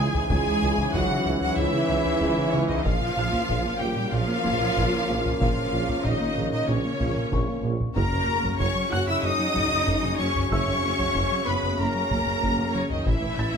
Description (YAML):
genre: cinematic, hybrid orchestral and electronic film score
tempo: 94 BPM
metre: 4/4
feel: straight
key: unclear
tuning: A4 = 440 Hz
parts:
  - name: clear symphonic violin section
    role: melody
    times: 0.0-13.6 s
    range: C#5 to F#6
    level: -30 LUFS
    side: left 2 dB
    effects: none
  - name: clear symphonic violin section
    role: second line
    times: 0.0-13.6 s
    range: C#5 to F#6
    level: -32 LUFS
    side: right 1 dB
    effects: none
  - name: clear symphonic viola section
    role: accompaniment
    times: 0.0-13.6 s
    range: C#4 to F#5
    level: -31 LUFS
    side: left 1 dB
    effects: none
  - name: clear trombone section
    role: sustained chords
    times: 0.0-13.6 s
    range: G#2 to C#4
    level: -31 LUFS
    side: right 3 dB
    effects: none
  - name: mellow French horn section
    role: sustained chords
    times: 0.0-13.6 s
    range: C#4 to F#4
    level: -32 LUFS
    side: left 6 dB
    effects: none
  - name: round analog bass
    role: riff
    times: 0.0-13.6 s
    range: C#2 to A#3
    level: -31 LUFS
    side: right 1 dB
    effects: none
  - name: rich symphonic double bass section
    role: bass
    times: 0.0-13.6 s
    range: F#1 to C#2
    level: -32 LUFS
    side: right 2 dB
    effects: none
  - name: warm symphonic cello section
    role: bass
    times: 0.0-13.6 s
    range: C#3 to F#4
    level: -32 LUFS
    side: right 2 dB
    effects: none
  - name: warm tuba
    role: bass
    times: 0.0-13.4 s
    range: F#1 to C#2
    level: -34 LUFS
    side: right 4 dB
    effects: none
  - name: felt-muted upright piano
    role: texture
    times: 0.0-13.6 s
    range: E5 to A6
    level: -41 LUFS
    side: left 2 dB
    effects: none
  - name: taiko ensemble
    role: drums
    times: 0.1-13.6 s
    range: none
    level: -31 LUFS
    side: left 1 dB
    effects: none
room: light reverb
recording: close, detailed microphones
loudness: -22 LUFS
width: side -6 dB against mid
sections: 0.0-13.6 A section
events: none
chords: 0.0 C#m; 2.9 A#m; 8.0 F#; 13.1 A